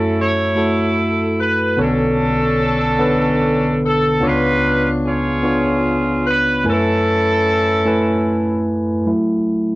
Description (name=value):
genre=gospel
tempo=49 BPM (dotted quarters)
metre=6/8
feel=straight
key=F# minor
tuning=A4 = 441 Hz
part: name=warm horn section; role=melody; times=0.0-8.7 s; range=C#4 to C#5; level=-18 LUFS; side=equal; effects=cassette tape
part: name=tine electric piano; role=accompaniment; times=0.0-9.8 s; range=B1 to G#5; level=-17 LUFS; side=equal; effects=cassette tape
room=wet studio reverb, RT60 0.5 s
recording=home recording on cassette, nothing above 7.8 kHz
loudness=-14 LUFS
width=side -20 dB against mid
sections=0.0-9.1 A section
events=none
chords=0.0 F#m7; 1.8 Bm9; 4.2 C#7b9; 6.7 F#m11; 9.1 F#m7